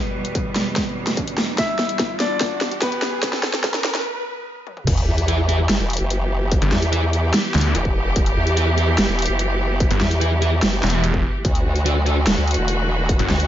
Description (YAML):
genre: heavy wobble dubstep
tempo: 146 BPM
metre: 4/4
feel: half-time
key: E minor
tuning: A4 = 440 Hz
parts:
  - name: bright grand piano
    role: melody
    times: 0.0-4.8 s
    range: B3 to E5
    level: -27 LUFS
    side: left 3 dB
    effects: digital delay
  - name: clear studio string section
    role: sustained chords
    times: 0.0-13.5 s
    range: E2 to G4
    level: -26 LUFS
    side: right 1 dB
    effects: sidechain pumping
  - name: riser and sub drop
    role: sound effects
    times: 0.4-6.5 s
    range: none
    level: -29 LUFS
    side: right 1 dB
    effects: none
  - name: dubstep drum kit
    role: drums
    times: 0.2-13.5 s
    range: crash cymbal, hi-hat, snare drum, toms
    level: -22 LUFS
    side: equal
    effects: none
  - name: electronic kick drum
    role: drums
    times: 0.4-13.2 s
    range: none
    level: -22 LUFS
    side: equal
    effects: distortion
  - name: formant-sweep wobble bass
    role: bass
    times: 4.9-13.5 s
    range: E1 to E2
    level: -20 LUFS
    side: equal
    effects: chorus, overdrive
  - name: thick fuzz guitar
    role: stabs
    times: 5.3-12.1 s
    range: D4 to E5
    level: -27 LUFS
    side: right 2 dB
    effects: distortion, digital delay
  - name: snarling distorted saw bass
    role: bass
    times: 6.6-13.3 s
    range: E1 to D2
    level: -19 LUFS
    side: equal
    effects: distortion, overdrive
room: light reverb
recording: high-pass filter, nothing above 7.5 kHz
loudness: -17 LUFS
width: side -11 dB against mid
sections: 0.0-4.9 A section; 4.9-13.5 B section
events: build-up 0.0-4.9; drum fill 0.0-4.0, 4.7; riser 0.4-4.0; break 4.0-4.9; drop 4.9-13.5; impact 4.9-6.5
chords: 0.0 Em; 11.4 D